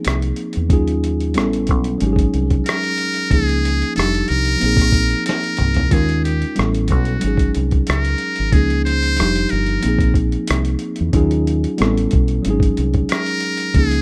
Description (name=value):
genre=R&B, neo-soul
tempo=92 BPM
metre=4/4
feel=swing 54% on 16ths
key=unclear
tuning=A4 = 440 Hz
part: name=mellow tine electric piano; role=accompaniment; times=0.0-14.0 s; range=Fb3 to Bb4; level=-23 LUFS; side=equal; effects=none
part: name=boom bap sampler-style drum kit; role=drums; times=0.0-14.0 s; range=hi-hat, kick drum, rim click, snare drum, toms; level=-22 LUFS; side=equal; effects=none
part: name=deep dub fingered electric bass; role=bass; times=0.1-14.0 s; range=F1 to Fb2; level=-22 LUFS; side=equal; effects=none
part: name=trumpet with metal mute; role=melody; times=2.7-14.0 s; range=Gb4 to C5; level=-24 LUFS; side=equal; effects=none
room=little or no reverb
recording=rough home demo mix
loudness=-18 LUFS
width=mono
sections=0.0-14.0 A section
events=drum fill 5.3-5.9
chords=0.0 Bb9sus4; 0.7 Ebm11; 1.4 A9; 2.0 Ab7sus4; 3.3 Db69; 4.0 F13; 4.6 Bb9sus4; 5.9 Eb9sus4; 6.6 A9; 7.2 Ab7sus4; 8.5 Db69; 9.2 Fsus2; 9.8 Bb9sus4; 11.1 Ebm11; 11.8 A9; 12.4 Ab7sus4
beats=0.05 | 0.70 1.35 2.00 2.65 | 3.31 3.96 4.61 5.26 | 5.92 6.57 7.22 7.87 | 8.52 9.18 9.83 10.48 | 11.13 11.79 12.44 13.09 | 13.74